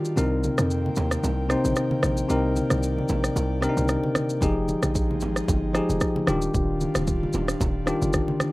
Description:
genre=afrobeats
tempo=113 BPM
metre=4/4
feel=swing 55% on 16ths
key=unclear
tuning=A4 = 439 Hz
part: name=bell-like tine electric piano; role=accompaniment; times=0.0-8.5 s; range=C3 to C5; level=-25 LUFS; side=left 1 dB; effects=none
part: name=airy breathy pad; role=sustained chords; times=0.0-8.5 s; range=Eb3 to G5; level=-34 LUFS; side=right 1 dB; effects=chorus
part: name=afro-pop drum kit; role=drums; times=0.1-8.5 s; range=kick drum, rim click, shaker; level=-27 LUFS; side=equal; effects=none
part: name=hard-hitting 808-style bass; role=bass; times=0.2-8.2 s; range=D1 to F2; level=-27 LUFS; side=equal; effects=none
part: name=congas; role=percussion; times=0.4-8.5 s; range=none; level=-32 LUFS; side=right 1 dB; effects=none
room=little or no reverb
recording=rough home demo mix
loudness=-22 LUFS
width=side -20 dB against mid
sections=0.0-8.5 A section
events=break 0.0-4.4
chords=0.2 Cm7; 4.4 Fm9; 6.3 Ebmaj9

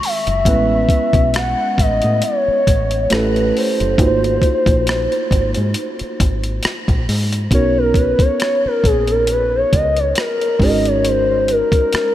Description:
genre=R&B, neo-soul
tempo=68 BPM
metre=4/4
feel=swing 55% on 16ths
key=unclear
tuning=A4 = 439 Hz
part: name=gliding portamento lead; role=melody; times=0.0-12.1 s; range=Ab4 to Gb5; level=-17 LUFS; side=left 1 dB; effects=chorus, analog delay
part: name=tine electric piano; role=accompaniment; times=0.0-12.1 s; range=Eb3 to C5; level=-21 LUFS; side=right 3 dB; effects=none
part: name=boom bap sampler-style drum kit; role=drums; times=0.0-12.1 s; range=hi-hat, kick drum, rim click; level=-19 LUFS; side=equal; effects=none
part: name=deep dub fingered electric bass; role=bass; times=0.3-12.0 s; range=Gb1 to A2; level=-20 LUFS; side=equal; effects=none
room=moderate huge ambient reverb, RT60 7.4 s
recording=dreamy mix soaked in reverb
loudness=-14 LUFS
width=side -12 dB against mid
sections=0.0-7.5 A section; 7.5-12.1 B section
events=soft synth lead solo 7.5-12.1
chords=0.5 Amaj9; 3.1 A9; 4.0 Ab13; 7.5 Cbmaj9; 10.6 Ab9sus4

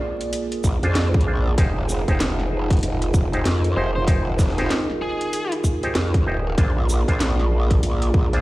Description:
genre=glitch hop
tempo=96 BPM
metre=4/4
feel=swing 61% on 16ths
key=F dorian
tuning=A4 = 440 Hz
part: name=dark analog pad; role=sustained chords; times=0.0-8.4 s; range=Bb3 to D5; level=-29 LUFS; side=right 1 dB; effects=chorus, vintage 12-bit sampler grit, sidechain pumping
part: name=warbly tape-like pad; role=texture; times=0.0-8.4 s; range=F4 to Eb5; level=-32 LUFS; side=right 3 dB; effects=chorus, built-in reverb, sidechain pumping
part: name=drum and bass drum kit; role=drums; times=0.2-8.4 s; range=hi-hat, shaker, snare drum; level=-27 LUFS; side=equal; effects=none
part: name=growl bass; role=bass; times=0.6-8.4 s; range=Eb1 to F2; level=-22 LUFS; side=equal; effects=chorus
part: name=electronic kick drum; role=drums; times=0.6-8.3 s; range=none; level=-18 LUFS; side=equal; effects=none
part: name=auto-wah clav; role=stabs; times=0.8-8.4 s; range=D4 to C5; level=-29 LUFS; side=equal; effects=sidechain pumping, digital delay
part: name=biting lead guitar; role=melody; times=3.8-5.5 s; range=Ab4 to C5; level=-28 LUFS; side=equal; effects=overdrive, vintage 12-bit sampler grit, digital delay
room=little or no reverb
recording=played on a big sound system in a bare room, large studio reverb, vinyl crackle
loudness=-18 LUFS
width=side -18 dB against mid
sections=0.0-8.4 A section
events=none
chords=0.0 Bb7; 1.6 Fm7; 6.6 Bb7

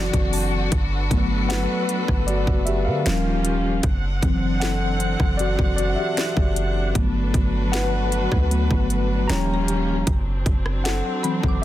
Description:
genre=contemporary R&B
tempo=77 BPM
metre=4/4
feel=straight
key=G major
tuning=A4 = 440 Hz
part: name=mellow tine electric piano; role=accompaniment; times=0.0-11.6 s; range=E3 to Bb5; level=-24 LUFS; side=left 2 dB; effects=fast stereo tremolo
part: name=warm studio string section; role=sustained chords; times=0.0-11.6 s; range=Eb3 to F#5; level=-28 LUFS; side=right 1 dB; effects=sidechain pumping
part: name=warm 808-style bass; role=bass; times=0.0-11.6 s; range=Eb1 to D3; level=-23 LUFS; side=equal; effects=none
part: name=mallet-like synth pluck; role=texture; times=0.0-1.1, 9.3-11.6 s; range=G5 to F#6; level=-37 LUFS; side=right 2 dB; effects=chorus, digital delay
part: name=trap drum kit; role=drums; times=0.1-11.6 s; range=hi-hat, kick drum, rim click, snare drum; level=-23 LUFS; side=equal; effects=none
room=little or no reverb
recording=dense, heavily limited modern master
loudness=-19 LUFS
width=side -14 dB against mid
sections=0.0-11.6 A section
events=tine electric piano solo 0.0-11.6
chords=0.0 D7/F#; 0.7 Gmaj7; 3.1 Eb9; 3.8 D7/F#; 7.0 Gmaj7; 9.3 Eb9; 10.1 D7/F#

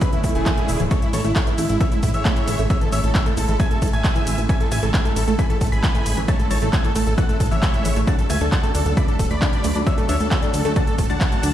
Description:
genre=uplifting trance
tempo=134 BPM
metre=4/4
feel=straight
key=A major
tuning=A4 = 440 Hz
part: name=dense compressed supersaw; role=melody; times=0.0-11.5 s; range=E4 to B5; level=-27 LUFS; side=right 1 dB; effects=cassette tape, sidechain pumping, digital delay
part: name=warm grand piano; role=second line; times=0.0-11.5 s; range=E5 to B6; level=-32 LUFS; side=left 2 dB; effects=sidechain pumping, digital delay
part: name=tight sequenced synth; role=arpeggios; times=0.0-11.5 s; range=E3 to E4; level=-29 LUFS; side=equal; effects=chorus, phaser, sidechain pumping, digital delay
part: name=big-room dance drum kit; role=drums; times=0.0-11.5 s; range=handclaps, hi-hat, ride cymbal, shaker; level=-29 LUFS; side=equal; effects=overdrive, sidechain pumping on hats, sidechain pumping on perc, sidechain pumping on cymbals
part: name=electronic kick drum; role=drums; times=0.0-11.3 s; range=none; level=-20 LUFS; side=equal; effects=overdrive
part: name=swell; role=sound effects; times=0.1-0.9 s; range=none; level=-30 LUFS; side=right 3 dB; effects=none
part: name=plucky analog bass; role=bass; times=0.2-11.5 s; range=D1 to A2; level=-22 LUFS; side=equal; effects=sidechain pumping
room=light reverb, digital ambience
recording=played on a big sound system in a bare room, stone room reverb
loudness=-17 LUFS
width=side -11 dB against mid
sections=0.0-11.5 A section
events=swell 0.1-0.9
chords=0.0 E7; 0.9 Amaj7; 8.1 Dmaj7

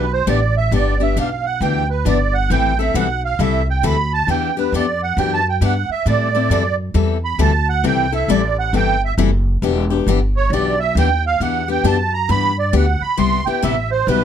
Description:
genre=acoustic string swing (jazz manouche)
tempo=135 BPM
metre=4/4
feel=swing 63% on 8ths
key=E minor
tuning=A4 = 440 Hz
part: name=musette accordion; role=melody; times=0.0-14.2 s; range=B4 to C6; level=-19 LUFS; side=right 7 dB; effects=none
part: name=picked steel-string acoustic guitar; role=accompaniment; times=0.0-14.2 s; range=C3 to A4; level=-20 LUFS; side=left 10 dB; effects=none
part: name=upright bass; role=bass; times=0.0-14.2 s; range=E1 to A2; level=-19 LUFS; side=equal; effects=none
room=light reverb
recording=close, detailed microphones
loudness=-15 LUFS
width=side -9 dB against mid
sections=0.0-14.2 A section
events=accordion solo 0.0-14.2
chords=0.0 Em7; 2.5 Am7; 4.3 Em7; 6.1 Am7; 9.6 Em7; 13.2 Cmaj7

